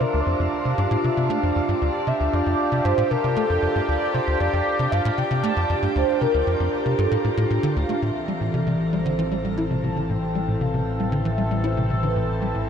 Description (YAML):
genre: ambient, sequencer-driven space music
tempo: 116 BPM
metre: 4/4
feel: straight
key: D minor, A minor from 8.0 s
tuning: A4 = 440 Hz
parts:
  - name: mellow horn-like synth lead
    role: melody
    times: 0.0-12.4 s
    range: A4 to A5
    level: -26 LUFS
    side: equal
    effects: phaser, wide subtle chorus, ping-pong delay
  - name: sweeping resonant pad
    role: sustained chords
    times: 0.0-12.7 s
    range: E3 to A4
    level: -25 LUFS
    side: right 1 dB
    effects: chorus, phaser
  - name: tight sequencer bass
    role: riff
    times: 0.0-12.6 s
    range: D2 to E4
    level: -24 LUFS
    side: equal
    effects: ensemble chorus, ping-pong delay
  - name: fat analog bass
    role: bass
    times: 8.0-12.7 s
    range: A1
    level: -28 LUFS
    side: equal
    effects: none
room: wet shimmer reverb, RT60 8.0 s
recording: none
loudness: -20 LUFS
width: side -7 dB against mid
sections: 0.0-8.0 A section; 8.0-12.7 B section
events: none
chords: 0.0 Dm; 8.0 Am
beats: 0.26 0.78 1.30 | 1.81 2.33 2.85 3.37 | 3.88 4.40 4.92 5.43 | 5.95 6.47 6.99 7.50 | 8.02 8.54 9.06 9.57 | 10.09 10.61 11.12 11.64 | 12.16 12.68